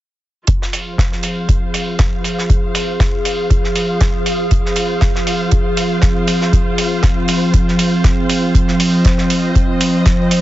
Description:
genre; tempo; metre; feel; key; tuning
acid house; 119 BPM; 4/4; swing 55% on 16ths; F minor; A4 = 441 Hz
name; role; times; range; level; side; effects
warbly tape-like pad; sustained chords; 0.5-10.4 s; F3 to C5; -17 LUFS; right 1 dB; chorus, built-in reverb, sidechain pumping
damped 70s drum kit; drums; 0.5-10.4 s; hi-hat, snare drum; -24 LUFS; right 2 dB; sidechain pumping on hats, high-pass filter on hats, high-pass filter on snare, high-pass filter on room
electronic kick drum; drums; 0.5-10.2 s; none; -14 LUFS; equal; none
dark chamber string section; texture; 0.5-10.4 s; F4 to F5; -24 LUFS; left 1 dB; sidechain pumping
electronic hi-hat; drums; 0.7-10.4 s; none; -22 LUFS; right 1 dB; low-pass filter on hats
room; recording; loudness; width
studio reverb; heavily compressed radio sound, nothing above 7.7 kHz; -13 LUFS; side -15 dB against mid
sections
0.5-10.4 A section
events
fade-in on string section 0.5-10.4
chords
0.5 Fm

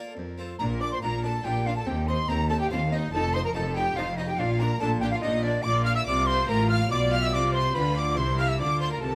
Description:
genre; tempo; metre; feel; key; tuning
classical, baroque-style concerto movement with solo episodes; 142 BPM; 3/4; straight; Bb major; A4 = 440 Hz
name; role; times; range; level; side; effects
rich chamber violin section; melody; 0.0-9.2 s; D5 to F6; -37 LUFS; equal; none
silver concert flute; melody; 0.0-9.2 s; D5 to F6; -32 LUFS; equal; none
rich chamber violin section; second line; 0.0-9.2 s; D4 to F5; -35 LUFS; equal; none
harpsichord; accompaniment; 0.0-9.2 s; Eb2 to Eb5; -40 LUFS; equal; none
rich chamber viola section; accompaniment; 0.0-9.2 s; C4 to Bb4; -38 LUFS; equal; none
rich chamber cello section; bass; 0.2-9.2 s; Eb2 to D3; -32 LUFS; equal; none
rich chamber double bass section; bass; 0.6-9.2 s; F1 to Eb2; -32 LUFS; equal; none
room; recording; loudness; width
light reverb; close, detailed microphones; -26 LUFS; mono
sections
0.6-9.2 A section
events
none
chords
0.0 F; 0.6 Bb; 1.9 Cm/Eb; 3.1 F5; 4.4 Bb; 5.6 Gm7/Bb; 6.9 G7/B; 8.2 C; 8.6 Dm

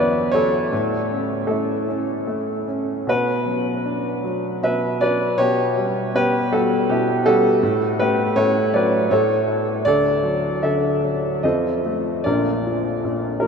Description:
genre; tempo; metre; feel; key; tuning
classical, lyrical solo piano; 72-82 BPM; 3/4; rubato; unclear; A4 = 435 Hz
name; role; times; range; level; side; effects
warm grand piano; solo; 0.0-13.5 s; Bb1 to E5; -18 LUFS; equal; none
room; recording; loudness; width
wet huge ambient reverb, RT60 8.2 s; in a vast, echoing space; -18 LUFS; side -6 dB against mid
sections
0.0-12.3 A section; 12.3-13.5 B section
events
none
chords
0.0 Esus2; 0.7 A; 3.1 Bm; 5.4 Em/B; 7.6 A13; 9.1 A; 9.9 Dadd9; 11.4 F7; 12.3 Bb

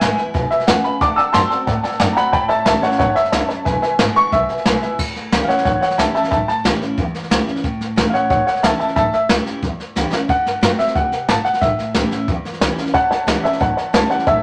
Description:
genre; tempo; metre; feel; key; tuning
rockabilly; 181 BPM; 4/4; straight; A mixolydian; A4 = 441 Hz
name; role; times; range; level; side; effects
warm upright piano; melody; 0.0-14.4 s; C#5 to E6; -19 LUFS; equal; none
honky-tonk upright piano; accompaniment; 0.0-4.9, 12.9-14.4 s; B4 to A5; -25 LUFS; equal; none
picked steel-string acoustic guitar; accompaniment; 0.0-14.4 s; E2 to F#4; -28 LUFS; equal; none
upright bass; bass; 0.0-14.4 s; E1 to A2; -28 LUFS; equal; none
jazz brush drum kit; drums; 0.0-14.3 s; crash cymbal, hi-hat, kick drum, snare drum; -22 LUFS; equal; none
room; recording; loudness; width
wet studio reverb, RT60 0.7 s; none; -17 LUFS; mono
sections
0.0-5.0 A section; 5.0-14.4 A section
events
drum fill 10.0-10.3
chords
0.0 E7; 1.0 D7; 2.3 A7; 3.7 E7; 5.0 A7; 10.3 D7; 11.6 A7

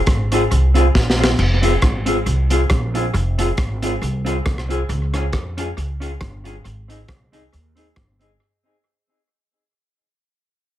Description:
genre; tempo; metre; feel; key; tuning
ska; 137 BPM; 4/4; swing 55% on 8ths; F minor; A4 = 440 Hz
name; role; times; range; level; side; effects
upright bass; bass; 0.1-8.3 s; F1 to F2; -19 LUFS; equal; none
crunchy breakbeat drum kit; drums; 0.1-8.3 s; crash cymbal, hi-hat, kick drum, rim click, snare drum; -20 LUFS; equal; tape echo
mellow electric guitar; accompaniment; 0.3-8.3 s; C4 to Ab4; -22 LUFS; equal; spring reverb, tape echo
room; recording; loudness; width
little or no reverb; heavily compressed radio sound; -16 LUFS; side -13 dB against mid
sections
0.0-1.4 A section; 1.4-8.4 B section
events
drum fill 0.9-1.4; fade-out 1.4-8.4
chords
0.0 Fm; 4.9 Db; 6.6 Ab

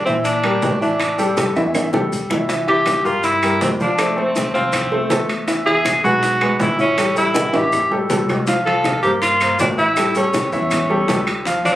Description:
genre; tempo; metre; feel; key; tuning
latin, salsa; 160 BPM; 4/4; straight; unclear; A4 = 439 Hz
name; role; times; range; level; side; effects
clear tenor saxophone; melody; 0.0-11.8 s; C4 to A4; -18 LUFS; equal; none
clear baby grand piano; accompaniment; 0.1-11.8 s; E3 to F5; -20 LUFS; equal; none
upright bass; bass; 0.1-11.8 s; A1 to Bb2; -29 LUFS; equal; none
congas; percussion; 0.1-11.8 s; none; -29 LUFS; left 1 dB; none
maracas; percussion; 0.1-11.8 s; none; -33 LUFS; left 1 dB; none
bongos; percussion; 0.3-11.6 s; none; -27 LUFS; left 3 dB; none
timbales; percussion; 0.3-11.8 s; none; -25 LUFS; right 1 dB; none
claves; percussion; 0.4-11.5 s; none; -27 LUFS; equal; none
room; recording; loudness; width
moderate small room reverb, RT60 0.5 s; recorded on a phone in the room, club reverb, compression; -15 LUFS; side -14 dB against mid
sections
0.0-2.5 A section; 2.5-11.8 B section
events
drum fill 1.6-2.5, 7.4-8.5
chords
0.0 Em7b5; 1.0 A7sus4; 2.5 C7; 4.0 F; 5.5 E; 7.0 A5; 8.5 C7sus4; 10.0 A7

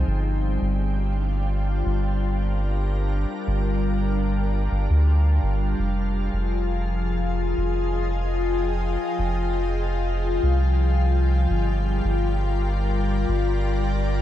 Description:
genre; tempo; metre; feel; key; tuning
ambient dub; 84 BPM; 4/4; straight; F dorian; A4 = 441 Hz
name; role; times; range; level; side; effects
soft additive organ-like pad; sustained chords; 0.0-14.2 s; F3 to G5; -26 LUFS; left 2 dB; ensemble chorus, built-in reverb
soft dub sub bass; bass; 0.0-14.2 s; F1 to D2; -22 LUFS; equal; none
room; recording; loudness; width
little or no reverb; none; -21 LUFS; side -12 dB against mid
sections
0.0-5.8 A section; 5.8-14.2 B section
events
none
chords
0.1 Gm7; 5.8 Fm7; 11.5 Gm7

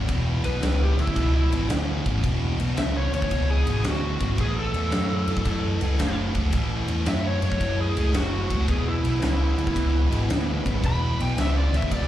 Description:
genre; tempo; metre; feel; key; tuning
blues rock power trio and southern rock; 112 BPM; 4/4; swing 67% on 8ths; E mixolydian; A4 = 440 Hz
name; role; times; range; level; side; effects
thick fuzz guitar; riff; 0.0-12.1 s; E2 to F#3; -28 LUFS; equal; distortion, slapback echo
overdriven picked electric bass; bass; 0.0-12.1 s; E1 to F#2; -24 LUFS; equal; none
huge arena drum kit; drums; 0.1-12.1 s; kick drum, ride cymbal, snare drum; -29 LUFS; equal; none
overdriven slide guitar; melody; 0.5-12.1 s; E4 to B5; -30 LUFS; equal; slapback echo, plate reverb
bright tonewheel organ; sustained chords; 8.7-12.1 s; G#3 to B4; -38 LUFS; right 2 dB; overdrive, chorus vibrato, slow rotary speaker, plate reverb
room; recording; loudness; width
light reverb; live gig heard through the venue's PA, club reverb, lossy compression artefacts; -21 LUFS; side -12 dB against mid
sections
0.0-12.1 A section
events
none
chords
0.0 E; 4.4 A; 8.7 E

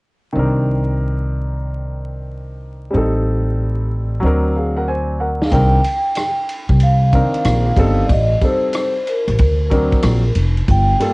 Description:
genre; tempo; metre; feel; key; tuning
hip hop, jazz-hop; 93 BPM; 4/4; swing 66% on 16ths; C dorian; A4 = 441 Hz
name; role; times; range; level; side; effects
warm baby grand piano; accompaniment; 0.3-11.1 s; Eb3 to Ab5; -20 LUFS; equal; cassette tape
upright bass; bass; 0.4-10.9 s; E#1 to D2; -16 LUFS; equal; none
vintage drum kit; drums; 5.4-11.1 s; hi-hat, kick drum, ride cymbal, rim click, snare drum; -20 LUFS; equal; cassette tape
vibraphone with soft mallets; melody; 5.5-11.1 s; Bb4 to G5; -19 LUFS; equal; analog delay
room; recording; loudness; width
little or no reverb; home recording on cassette, vinyl crackle, nothing above 10.7 kHz; -14 LUFS; side -27 dB against mid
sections
0.4-5.5 A section; 5.5-11.1 B section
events
drum fill 4.2-5.5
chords
0.4 Cm9; 2.9 Am7b5; 4.2 Daug7; 5.5 Cm9; 8.1 Am7b5; 9.4 D7alt

